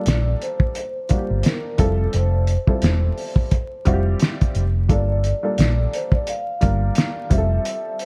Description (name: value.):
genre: hip hop, jazz-hop.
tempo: 87 BPM.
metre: 4/4.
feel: swing 58% on 16ths.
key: G dorian.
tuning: A4 = 439 Hz.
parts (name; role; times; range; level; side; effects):
vibraphone with soft mallets; melody; 0.0-8.1 s; A4 to F5; -30 LUFS; equal; none.
dark upright piano; accompaniment; 0.0-8.0 s; G3 to Bb4; -30 LUFS; equal; none.
hollow-body short-scale fingered electric bass; bass; 0.1-7.6 s; E1 to Bb1; -22 LUFS; equal; none.
cloth-damped thuddy drum kit; drums; 0.1-8.1 s; hi-hat, kick drum, snare drum; -22 LUFS; equal; none.
room: studio ambience.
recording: dark, warm production, vinyl crackle.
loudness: -20 LUFS.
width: mono.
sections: 0.0-8.1 A section.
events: break 7.7-8.1.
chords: 0.0 Gm9; 1.8 Fmaj9; 4.9 Gm9; 7.3 Fmaj9.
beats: 0.07 0.76 1.45 | 2.14 2.83 3.52 4.21 | 4.89 5.58 6.28 6.96 | 7.65.